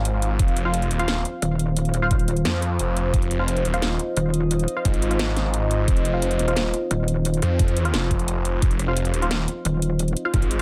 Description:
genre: dark technical drum and bass.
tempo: 175 BPM.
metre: 4/4.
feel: straight.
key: F minor.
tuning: A4 = 439 Hz.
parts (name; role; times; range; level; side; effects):
dark analog pad; sustained chords; 0.0-10.6 s; F4 to F5; -30 LUFS; equal; chorus, phaser, sidechain pumping.
snarling distorted saw bass; bass; 0.0-10.6 s; Eb1 to F2; -25 LUFS; equal; distortion, overdrive.
drum and bass drum kit; drums; 0.1-10.6 s; hi-hat, rim click, snare drum; -31 LUFS; equal; none.
electronic kick drum; drums; 0.4-10.4 s; none; -23 LUFS; equal; none.
filtered dub chord stab; stabs; 0.7-10.6 s; F4 to F5; -32 LUFS; equal; phaser, cassette tape, delay.
pulsing pluck wobble bass; bass; 1.4-4.7, 6.9-7.4, 9.7-10.2 s; Eb1; -24 LUFS; equal; chorus.
room: light reverb.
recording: none.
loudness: -22 LUFS.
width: mono.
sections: 0.0-10.6 A section.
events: none.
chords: 0.0 Fm.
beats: 0.05 | 0.39 0.74 1.08 1.42 | 1.77 2.11 2.45 2.79 | 3.14 3.48 3.82 4.17 | 4.51 4.85 5.19 5.54 | 5.88 6.22 6.57 6.91 | 7.25 7.59 7.94 8.28 | 8.62 8.97 9.31 9.65 | 9.99 10.34.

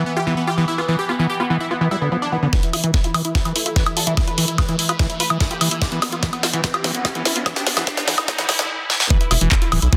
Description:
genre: psychedelic trance.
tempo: 146 BPM.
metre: 4/4.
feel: straight.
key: E phrygian.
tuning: A4 = 440 Hz.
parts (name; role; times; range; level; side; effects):
evolving wavetable pad; sustained chords; 0.0-10.0 s; E3; -32 LUFS; equal; phaser, built-in reverb, sidechain pumping.
overdriven acid bass; riff; 0.0-10.0 s; D3 to F4; -26 LUFS; equal; sidechain pumping, delay.
supersaw stab; melody; 0.1-10.0 s; B3 to B4; -28 LUFS; equal; phaser, sidechain pumping, low-pass filter, delay.
resonant blip pluck; second line; 2.5-4.3, 9.1-9.3 s; G3 to B3; -37 LUFS; equal; phaser, sidechain pumping, high-pass filter, delay.
drum and bass drum kit; drums; 2.5-10.0 s; handclaps, hi-hat, snare drum, woodblock; -23 LUFS; equal; high-pass filter on snare, high-pass filter on hats, high-pass filter on perc.
electronic kick drum; drums; 2.5-10.0 s; none; -20 LUFS; equal; none.
riser; sound effects; 4.8-8.7 s; none; -33 LUFS; equal; none.
round analog bass; bass; 9.3-9.9 s; D1 to B1; -20 LUFS; equal; none.
room: moderate digital room reverb, RT60 1.2 s.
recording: dense, heavily limited modern master, high-pass filter.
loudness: -19 LUFS.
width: mono.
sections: 0.0-2.5 A section; 2.5-9.1 B section.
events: filter sweep on acid bass 0.0-2.5, 2.5-9.1; build-up 2.5-9.1; drum fill 2.5-8.7, 8.9; filter sweep on supersaw synth 2.5-9.1; filter sweep 2.5-9.1; riser 4.8-8.7.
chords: 0.0 E5.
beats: 0.06 0.47 | 0.89 1.30 1.71 2.12 | 2.53 2.94 3.35 3.76 | 4.17 4.58 4.99 5.41 | 5.82 6.23 6.64 7.05 | 7.46 7.87 8.28 8.69 | 9.10 9.52 9.93.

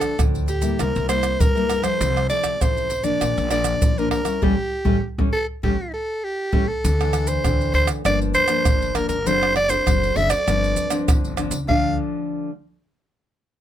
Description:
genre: samba and choro.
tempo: 99 BPM.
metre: 4/4.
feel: straight.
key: D minor.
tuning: A4 = 440 Hz.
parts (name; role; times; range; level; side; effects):
growling soprano saxophone; melody; 0.0-12.0 s; G4 to F5; -22 LUFS; equal; none.
nylon-string guitar; accompaniment; 0.0-12.5 s; G2 to A4; -25 LUFS; left 3 dB; none.
maracas, surdo, pandeiro and tamborim; percussion; 0.0-11.8 s; none; -23 LUFS; right 1 dB; none.
upright bass; bass; 0.2-12.0 s; F#1 to G2; -25 LUFS; equal; none.
room: light reverb.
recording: close, detailed microphones.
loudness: -18 LUFS.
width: side -11 dB against mid.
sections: 0.0-6.8 A section; 6.8-11.7 B section; 11.7-13.6 C section.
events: band accent 4.4-6.8.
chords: 0.0 Dm; 0.8 C7; 2.0 Fmaj7/C; 3.2 Bb; 4.4 A7; 6.8 Dsus2; 8.1 Gm7; 9.3 D7/F#; 10.5 G7sus4; 11.7 Dm.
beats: 0.19 0.80 1.40 | 2.01 2.61 3.21 3.82 | 4.42 5.03 5.63 6.24 | 6.84 7.45 8.05 8.66 | 9.27 9.87 10.47 11.08 | 11.68 12.29.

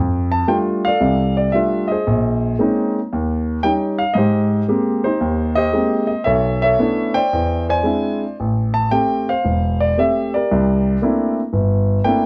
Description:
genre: solo jazz.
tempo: 114 BPM.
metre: 4/4.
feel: swing 69% on 8ths, rubato.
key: F major.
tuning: A4 = 444 Hz.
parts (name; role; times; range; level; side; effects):
warm grand piano; solo; 0.0-12.3 s; E1 to A5; -18 LUFS; equal; none.
room: moderate studio reverb, RT60 0.9 s.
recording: dark, warm production.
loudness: -18 LUFS.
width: mono.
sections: 0.0-12.3 A section.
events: none.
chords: 0.0 F69; 2.1 Bbm11; 3.1 Eb7; 4.2 Abmaj9; 6.2 Bm11; 7.3 Eaug7; 8.4 Am7; 10.5 C13.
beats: 0.50 1.03 1.56 | 2.09 2.61 3.13 3.65 | 4.16 4.68 5.20 5.72 | 6.25 6.78 7.31 7.85 | 8.38 8.92 9.45 9.98 | 10.51 11.02 11.53 12.04.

